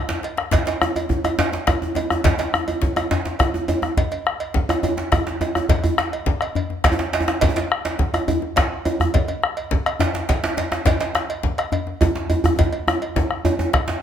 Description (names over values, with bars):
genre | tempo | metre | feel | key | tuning
west african traditional, West African drum ensemble | 139 BPM (dotted quarters) | 12/8 | straight | none | none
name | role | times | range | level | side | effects
bombo | percussion | 0.1-14.0 s | none | -22 LUFS | left 1 dB | none
djembe | percussion | 0.1-14.0 s | none | -26 LUFS | left 6 dB | none
djembe | percussion | 0.1-14.0 s | none | -22 LUFS | right 2 dB | none
cowbell | percussion | 0.2-13.9 s | none | -28 LUFS | right 5 dB | none
room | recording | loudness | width
light reverb | close, detailed microphones | -18 LUFS | side -9 dB against mid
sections
0.5-14.0 A section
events
drum fill 0.0-0.5, 12.6-14.0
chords
none